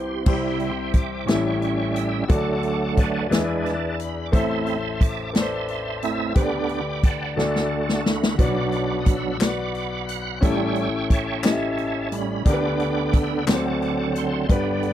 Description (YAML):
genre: slow gospel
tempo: 59 BPM (dotted quarters)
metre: 6/8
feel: straight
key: unclear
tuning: A4 = 440 Hz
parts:
  - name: clear concert grand piano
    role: accompaniment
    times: 0.0-14.9 s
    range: G1 to E5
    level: -25 LUFS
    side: left 3 dB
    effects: none
  - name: bright tonewheel organ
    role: sustained chords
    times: 0.0-14.9 s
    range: G2 to F#6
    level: -26 LUFS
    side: right 4 dB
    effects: fast rotary speaker, chorus vibrato
  - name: swinging big-band drum kit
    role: drums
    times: 0.3-14.9 s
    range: crash cymbal, hi-hat, kick drum, snare drum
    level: -20 LUFS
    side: equal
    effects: none
  - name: group handclap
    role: percussion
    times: 9.4-13.8 s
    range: none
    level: -29 LUFS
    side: left 8 dB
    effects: none
room: little or no reverb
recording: dry, close 1970s-style studio recording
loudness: -20 LUFS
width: side -11 dB against mid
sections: 0.3-14.9 A section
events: tonewheel organ solo 0.3-14.9; drum fill 7.4-8.4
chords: 0.3 C; 1.3 A7; 2.3 D; 3.3 E7; 4.3 Am; 6.4 G/D; 7.4 D; 8.4 Bm; 10.4 A7; 12.5 G/D; 13.5 D7